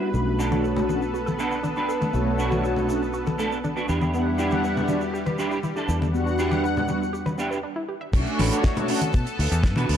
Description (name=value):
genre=nu-disco, nu disco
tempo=120 BPM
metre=4/4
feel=straight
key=B minor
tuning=A4 = 440 Hz
part: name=mellow synth brass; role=accompaniment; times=0.0-9.0 s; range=G3 to F#5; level=-26 LUFS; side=equal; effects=chorus, cassette tape, sidechain pumping, analog delay
part: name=lush unison pad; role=sustained chords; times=0.0-10.0 s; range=G3 to F#5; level=-31 LUFS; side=equal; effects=chorus, sidechain pumping
part: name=analog pluck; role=arpeggios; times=0.0-8.1 s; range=A3 to E5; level=-33 LUFS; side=right 2 dB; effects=chorus, sidechain pumping, tape echo
part: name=semi-hollow electric guitar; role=riff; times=0.0-10.0 s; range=B3 to B4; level=-29 LUFS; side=right 3 dB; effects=ensemble chorus, low-pass filter, analog delay
part: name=fingered electric bass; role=bass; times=0.1-10.0 s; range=A1 to B2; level=-27 LUFS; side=equal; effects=none
part: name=egg shaker and congas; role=percussion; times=0.1-9.9 s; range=none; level=-30 LUFS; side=left 2 dB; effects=none
part: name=damped 70s drum kit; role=drums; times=8.1-10.0 s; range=crash cymbal, hi-hat, snare drum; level=-30 LUFS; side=right 3 dB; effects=none
part: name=kick drum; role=drums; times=8.1-9.7 s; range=none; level=-20 LUFS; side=equal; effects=none
room=moderate plate reverb, RT60 2.2 s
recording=none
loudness=-22 LUFS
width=side -9 dB against mid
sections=0.0-8.1 A section; 8.1-10.0 B section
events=filter sweep on analog polysynth 0.0-8.1; filter sweep on analog synth pad 0.0-8.1; filter sweep on synth arpeggio sound 0.0-8.1; break 7.6-8.1; drop 8.1-10.0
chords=0.1 Bm7; 3.9 Em7; 8.1 Bm7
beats=| 0.14 0.64 1.14 1.64 | 2.14 2.64 3.14 3.64 | 4.14 4.64 5.14 5.64 | 6.14 6.64 7.14 7.64 | 8.14 8.64 9.14 9.64